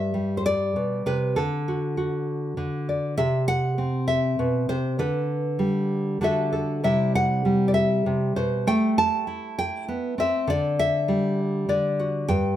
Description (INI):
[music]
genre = folk, solo fingerstyle acoustic guitar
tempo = 99 BPM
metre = 3/4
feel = straight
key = unclear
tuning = A4 = 440 Hz
[part]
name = nylon-string guitar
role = solo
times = 0.0-12.6 s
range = G2 to A5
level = -22 LUFS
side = equal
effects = none
[sound]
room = moderate studio reverb, RT60 0.9 s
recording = heard from further back in the room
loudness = -22 LUFS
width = side -12 dB against mid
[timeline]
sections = 0.0-12.6 A section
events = none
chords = 0.0 G; 1.4 D; 3.2 Cmaj7#11; 5.0 Dsus4; 6.2 Dadd9; 6.8 C; 8.7 Am7; 10.5 Dsus4; 11.7 D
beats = 0.14 0.75 | 1.36 1.97 2.57 | 3.17 3.77 4.38 | 4.98 5.59 6.21 | 6.83 7.45 8.06 | 8.67 9.28 9.88 | 10.49 11.09 11.69 | 12.29